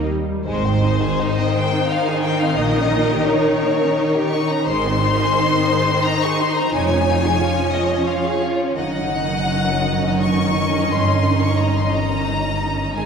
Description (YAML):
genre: classical, slow romantic movement for string orchestra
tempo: 74-92 BPM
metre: 3/4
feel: rubato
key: Ab major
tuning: A4 = 440 Hz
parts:
  - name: clear studio violin section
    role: melody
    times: 0.0-13.1 s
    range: C5 to Db6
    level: -22 LUFS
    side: left 4 dB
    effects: none
  - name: rich studio violin section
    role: second line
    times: 0.0-13.1 s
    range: Ab3 to Eb5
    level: -22 LUFS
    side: left 1 dB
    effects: none
  - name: warm studio viola section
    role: accompaniment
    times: 0.0-13.1 s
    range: Eb3 to Eb4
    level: -22 LUFS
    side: right 1 dB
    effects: none
  - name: clear studio cello section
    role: bass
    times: 0.0-13.1 s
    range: F2 to Bb2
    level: -25 LUFS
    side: right 1 dB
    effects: none
  - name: warm studio double bass section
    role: bass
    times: 0.0-13.1 s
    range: F1 to Eb2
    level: -24 LUFS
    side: right 1 dB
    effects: none
room: wet concert hall reverb, RT60 2.1 s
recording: heard from further back in the room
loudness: -16 LUFS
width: side -6 dB against mid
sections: 0.5-13.1 A section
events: none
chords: 0.5 Ab; 2.6 Eb7(no3)/Bb; 4.7 Ab; 6.7 Db/F; 8.8 Ebm7/Gb; 10.9 Eb7/G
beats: | 0.46 1.18 1.87 | 2.57 3.27 3.97 | 4.68 5.38 6.05 | 6.74 7.41 8.07 | 8.77 9.46 10.22 | 10.91 11.60 12.29 | 12.97